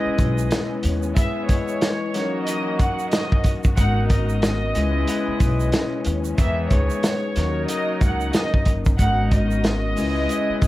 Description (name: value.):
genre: hip hop, boom-bap hip-hop.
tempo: 92 BPM.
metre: 4/4.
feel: swing 60% on 16ths.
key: unclear.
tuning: A4 = 440 Hz.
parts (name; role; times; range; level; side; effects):
warm studio violin section; melody; 0.0-10.7 s; C#5 to F#5; -27 LUFS; right 1 dB; high-pass filter, low-pass filter, analog delay.
vibraphone with soft mallets; accompaniment; 0.0-10.7 s; F#3 to E5; -26 LUFS; left 5 dB; cassette tape, high-pass filter, low-pass filter.
warm symphonic string section; sustained chords; 0.0-10.7 s; B2 to A#4; -35 LUFS; right 2 dB; high-pass filter, low-pass filter.
warm horn section; stabs; 0.0-10.7 s; D#3 to E5; -33 LUFS; right 1 dB; high-pass filter, low-pass filter, analog delay.
upright bass; bass; 0.1-10.7 s; F#1 to E2; -23 LUFS; equal; none.
crunchy breakbeat drum kit; drums; 0.2-10.7 s; hi-hat, kick drum, snare drum; -20 LUFS; equal; none.
egg shaker; percussion; 0.2-10.7 s; none; -40 LUFS; right 12 dB; none.
room: little or no reverb.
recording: vinyl crackle.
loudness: -18 LUFS.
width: side -16 dB against mid.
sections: 0.0-10.7 A section.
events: none.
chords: 0.0 C#m7; 1.2 Emaj7; 2.1 D#m7; 3.8 G#m11; 4.8 C#m7; 6.4 Emaj7; 7.4 D#m7; 9.0 G#m11; 10.0 C#m7.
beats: 0.51 | 1.17 1.82 2.47 3.12 | 3.77 4.43 5.08 5.73 | 6.38 7.04 7.69 8.34 | 8.99 9.64 10.30.